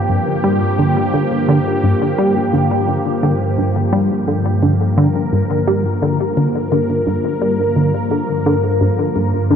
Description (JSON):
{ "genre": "ambient, sequencer-driven space music", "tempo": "86 BPM", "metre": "4/4", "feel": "straight", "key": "G minor", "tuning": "A4 = 441 Hz", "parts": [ { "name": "phased analog pad", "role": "sustained chords", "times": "0.0-9.6 s", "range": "G2 to Bb4", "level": "-17 LUFS", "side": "equal", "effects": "phaser, chorus" }, { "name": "tight sequenced synth", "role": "riff", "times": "0.1-9.6 s", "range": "G2 to G3", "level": "-17 LUFS", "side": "left 1 dB", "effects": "chorus, ping-pong delay" } ], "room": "wet huge ambient reverb, RT60 7.5 s", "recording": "cassette tape", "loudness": "-14 LUFS", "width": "side -8 dB against mid", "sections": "0.0-9.6 A section", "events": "filter sweep on synth arpeggio sound 0.0-9.6", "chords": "0.0 Gm7" }